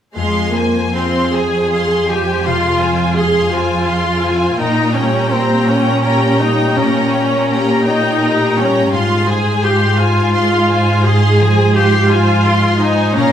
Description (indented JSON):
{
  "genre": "classical, slow romantic movement for symphony orchestra",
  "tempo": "56 BPM (dotted quarters)",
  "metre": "12/8",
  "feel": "rubato",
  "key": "F minor",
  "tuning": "A4 = 440 Hz",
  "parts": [
    { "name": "rich symphonic violin section", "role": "melody", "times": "0.2-13.3 s", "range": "G5 to C6", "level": "-22 LUFS", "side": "left 2 dB", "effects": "none" },
    { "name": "bright symphonic violin section", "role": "second line", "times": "0.2-13.3 s", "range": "Ab4 to Bb5", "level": "-24 LUFS", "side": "left 1 dB", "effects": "none" },
    { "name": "rich symphonic viola section", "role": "accompaniment", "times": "0.2-13.3 s", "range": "Ab3 to Ab4", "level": "-16 LUFS", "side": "equal", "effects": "none" },
    { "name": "concert harp", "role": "arpeggios", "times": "0.2-13.3 s", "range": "F2 to Db5", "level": "-22 LUFS", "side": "left 5 dB", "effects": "none" },
    { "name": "rich symphonic cello section", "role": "bass", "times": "0.2-13.3 s", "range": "F2 to Bb2", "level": "-17 LUFS", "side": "right 2 dB", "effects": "none" }
  ],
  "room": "wet recital hall reverb, RT60 1.4 s",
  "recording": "none",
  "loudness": "-12 LUFS",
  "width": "side -9 dB against mid",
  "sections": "0.2-13.3 A section",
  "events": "none",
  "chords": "0.2 Fm; 4.6 Gdim/Bb; 8.9 Fm/Ab"
}